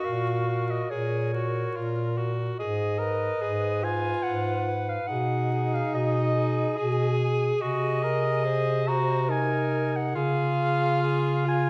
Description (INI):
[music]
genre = classical, lyrical piece for single-reed quartet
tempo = 71 BPM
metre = 3/4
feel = rubato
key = Db major from 7.6 s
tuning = A4 = 441 Hz
[part]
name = warm clarinet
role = melody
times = 0.0-11.7 s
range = C#5 to Bb5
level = -33 LUFS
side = equal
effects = none
[part]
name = clear alto saxophone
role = second line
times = 0.0-11.7 s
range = F4 to C5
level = -36 LUFS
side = equal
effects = none
[part]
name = warm tenor saxophone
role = accompaniment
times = 0.0-11.7 s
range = Eb4 to A#4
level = -32 LUFS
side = equal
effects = none
[part]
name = dark bass clarinet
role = bass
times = 0.1-11.7 s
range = G#2 to Db3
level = -30 LUFS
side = equal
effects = none
[sound]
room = moderate recital hall reverb, RT60 1.6 s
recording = vinyl crackle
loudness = -26 LUFS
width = mono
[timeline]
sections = 0.0-11.7 A section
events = none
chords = 0.0 F#/A#; 2.6 G#m; 5.1 G#m/B; 7.6 Ab/C; 10.2 Db